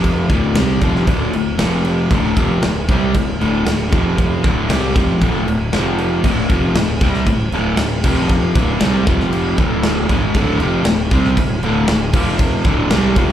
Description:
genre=hard rock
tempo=117 BPM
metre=4/4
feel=straight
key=D minor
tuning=A4 = 439 Hz
part: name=overdriven semi-hollow guitar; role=riff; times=0.0-13.3 s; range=D2 to C4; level=-17 LUFS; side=equal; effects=slapback echo
part: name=fuzz fingered electric bass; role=bass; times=0.0-13.3 s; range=D1 to C2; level=-20 LUFS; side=equal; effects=overdrive
part: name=big rock drum kit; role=drums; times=0.0-13.3 s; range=crash cymbal, kick drum, snare drum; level=-18 LUFS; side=equal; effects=none
room=small room ambience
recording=live gig heard through the venue's PA, club reverb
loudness=-14 LUFS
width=side -10 dB against mid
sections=0.0-13.3 A section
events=none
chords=0.3 Dm; 1.6 F5; 2.1 Dm; 3.9 F5; 4.4 Dm; 5.7 F5; 6.2 Dm; 8.0 F5; 8.6 D5; 9.1 F5; 9.6 Dm; 12.1 F5; 12.7 D5

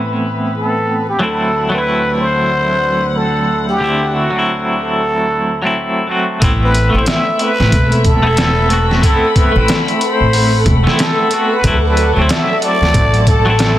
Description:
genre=trip hop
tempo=92 BPM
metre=4/4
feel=swing 60% on 16ths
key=A dorian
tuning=A4 = 441 Hz
part: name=clean electric guitar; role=accompaniment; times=0.0-13.8 s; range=D3 to F#4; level=-17 LUFS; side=equal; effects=tremolo, tape echo
part: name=dark studio string section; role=sustained chords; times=0.0-13.8 s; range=D2 to B5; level=-21 LUFS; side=left 1 dB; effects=low-pass filter
part: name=flickering grainy texture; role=texture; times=0.0-13.8 s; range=A4 to B5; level=-27 LUFS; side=equal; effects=none
part: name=trumpet with plunger mute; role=melody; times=0.6-13.8 s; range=F#4 to E5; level=-17 LUFS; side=equal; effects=tape echo
part: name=upright bass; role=bass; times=6.4-13.8 s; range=E1 to D2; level=-14 LUFS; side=equal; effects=none
part: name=trip hop sampler-style drum kit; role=drums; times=6.4-13.8 s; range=hi-hat, kick drum, snare drum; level=-15 LUFS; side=equal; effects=small room ambience
room=light reverb, studio ambience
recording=dense, heavily limited modern master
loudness=-11 LUFS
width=side -13 dB against mid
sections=0.0-6.4 A section; 6.4-13.8 B section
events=none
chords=0.0 Amadd9; 1.2 D7; 6.4 Amadd9; 11.6 D7

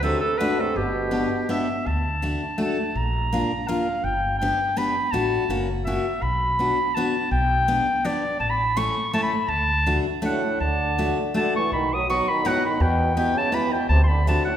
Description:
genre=alpine folk, alpine dance band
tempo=164 BPM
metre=3/4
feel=swing 54% on 8ths, rubato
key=D major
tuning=A4 = 441 Hz
part: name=bright clarinet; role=melody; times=0.0-14.6 s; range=G4 to D#6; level=-24 LUFS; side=equal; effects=none
part: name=clear euphonium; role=second line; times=0.0-1.7, 10.2-14.6 s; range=A2 to F#3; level=-28 LUFS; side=right 3 dB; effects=none
part: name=picked steel-string acoustic guitar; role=accompaniment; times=0.0-14.5 s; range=A3 to G4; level=-27 LUFS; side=left 2 dB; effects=none
part: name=upright bass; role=bass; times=0.0-14.4 s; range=F#1 to E2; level=-25 LUFS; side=equal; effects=none
room=wet recital hall reverb, RT60 1.8 s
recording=recorded in a church or concert hall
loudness=-20 LUFS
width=side -10 dB against mid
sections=0.0-1.9 A section; 1.9-14.6 B section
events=none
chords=0.0 D; 0.7 G; 1.9 D; 3.0 Bb; 4.0 G; 5.1 D/A; 5.5 F#7; 6.2 Bm; 7.3 G/B; 8.4 A; 9.5 D; 11.7 B; 12.8 Em; 13.9 D

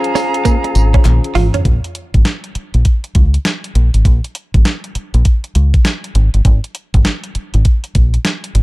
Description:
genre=R&B, new jack swing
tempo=100 BPM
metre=4/4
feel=swing 63% on 16ths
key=Bb minor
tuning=A4 = 442 Hz
part: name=bell-like tine electric piano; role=accompaniment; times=0.0-1.7 s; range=Db4 to C5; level=-22 LUFS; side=left 6 dB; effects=none
part: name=flute section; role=sustained chords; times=0.0-1.6 s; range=Ab4 to Bb5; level=-20 LUFS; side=right 3 dB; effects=none
part: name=crisp 8-bit digital drum machine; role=drums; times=0.0-8.6 s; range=hi-hat, kick drum, snare drum, tambourine, toms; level=-14 LUFS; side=equal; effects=none
part: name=direct-recorded clean electric guitar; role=riff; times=0.2-1.6 s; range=Bb3 to F4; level=-21 LUFS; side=right 6 dB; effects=wide subtle chorus
part: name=deep dub fingered electric bass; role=bass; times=0.8-8.6 s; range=G1 to Db2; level=-12 LUFS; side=equal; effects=none
part: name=group handclap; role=percussion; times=1.0-1.2 s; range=none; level=-34 LUFS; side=left 3 dB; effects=none
room=little or no reverb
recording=dark, warm production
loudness=-11 LUFS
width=side -20 dB against mid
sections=0.0-1.7 A section; 1.7-8.6 B section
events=drum fill 1.1-1.7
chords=0.0 Bbm7; 6.2 Absus2

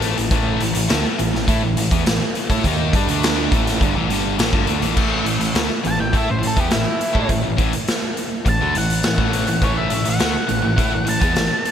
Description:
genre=classic rock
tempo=103 BPM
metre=4/4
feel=straight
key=unclear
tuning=A4 = 441 Hz
part: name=tight distorted guitar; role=riff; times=0.0-11.5 s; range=G2 to E4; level=-23 LUFS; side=left 8 dB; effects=distortion, slapback echo
part: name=growling picked electric bass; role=bass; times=0.0-11.5 s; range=G1 to A2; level=-24 LUFS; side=equal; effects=overdrive
part: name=raw garage drum kit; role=drums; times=0.0-11.7 s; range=crash cymbal, hi-hat, kick drum, snare drum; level=-20 LUFS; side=equal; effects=none
part: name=crunchy overdriven guitar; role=riff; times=0.3-11.6 s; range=G2 to E4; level=-24 LUFS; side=right 9 dB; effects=phaser, slapback echo
part: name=octave-fuzz lead guitar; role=melody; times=5.9-11.7 s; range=E4 to A5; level=-23 LUFS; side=equal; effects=distortion, slapback echo, digital delay
room=light reverb, studio reverb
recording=none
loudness=-16 LUFS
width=side -9 dB against mid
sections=0.0-5.0 A section; 5.0-11.7 B section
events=lead electric guitar solo 5.0-11.7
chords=0.0 A5

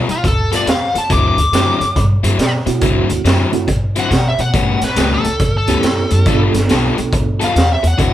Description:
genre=electric blues shuffle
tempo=140 BPM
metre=4/4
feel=swing 64% on 8ths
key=D mixolydian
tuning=A4 = 441 Hz
part: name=overdriven semi-hollow guitar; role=riff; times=0.0-8.1 s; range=A2 to A4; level=-20 LUFS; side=left 5 dB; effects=none
part: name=smooth overdriven lead guitar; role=melody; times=0.1-8.1 s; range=F4 to D6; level=-18 LUFS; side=left 1 dB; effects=none
part: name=upright bass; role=bass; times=0.1-8.1 s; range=G1 to B2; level=-18 LUFS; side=equal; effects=none
part: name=raw garage drum kit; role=drums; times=0.1-8.1 s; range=hi-hat, kick drum, snare drum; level=-16 LUFS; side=right 1 dB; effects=none
part: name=mellow reed electric piano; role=accompaniment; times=2.7-7.5 s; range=A3 to A4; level=-20 LUFS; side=right 6 dB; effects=fast tremolo
room=light reverb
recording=band playing live in one room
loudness=-12 LUFS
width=side -12 dB against mid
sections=0.0-8.1 A section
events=none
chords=0.0 G9; 1.1 D9; 4.5 A9; 6.3 G9

